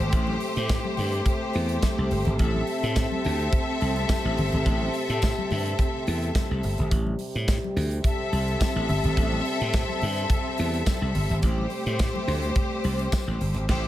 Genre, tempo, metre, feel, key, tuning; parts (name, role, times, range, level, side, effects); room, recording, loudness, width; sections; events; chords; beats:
disco; 106 BPM; 4/4; straight; A minor; A4 = 441 Hz
clear studio string section; second line; 0.0-13.9 s; A3 to E5; -29 LUFS; left 1 dB; slapback echo
mellow French horn section; sustained chords; 0.0-13.9 s; C3 to G4; -33 LUFS; equal
slap bass; bass; 0.0-13.9 s; G1 to A2; -26 LUFS; equal
modern studio drum kit; drums; 0.1-13.9 s; crash cymbal, hi-hat, kick drum, snare drum; -27 LUFS; equal
congas; percussion; 0.3-13.7 s; -36 LUFS; left 2 dB
tambourine; percussion; 0.7-13.3 s; -40 LUFS; left 8 dB
light reverb; -23 LUFS; side -14 dB against mid
0.0-13.9 A section
band accent 13.7
0.0 Am7
| 0.13 0.70 1.26 1.83 | 2.39 2.96 3.52 4.09 | 4.66 5.22 5.79 6.35 | 6.92 7.48 8.04 8.61 | 9.17 9.74 10.30 10.87 | 11.43 11.99 12.56 13.12 | 13.69